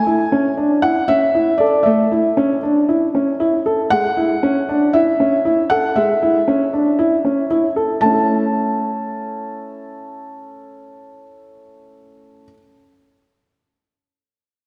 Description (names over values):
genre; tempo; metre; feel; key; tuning
electronica; 117 BPM; 4/4; straight; A major; A4 = 440 Hz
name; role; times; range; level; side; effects
felt-muted upright piano; melody; 0.0-12.4 s; D5 to A5; -21 LUFS; equal; tape echo
dark upright piano; riff; 0.1-12.6 s; G#3 to A4; -19 LUFS; equal; tape echo
room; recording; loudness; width
wet scoring stage reverb, RT60 2.1 s; none; -17 LUFS; mono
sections
0.0-8.0 A section; 8.0-12.1 B section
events
drop 0.0-8.0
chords
0.0 A; 3.9 C#m; 8.0 A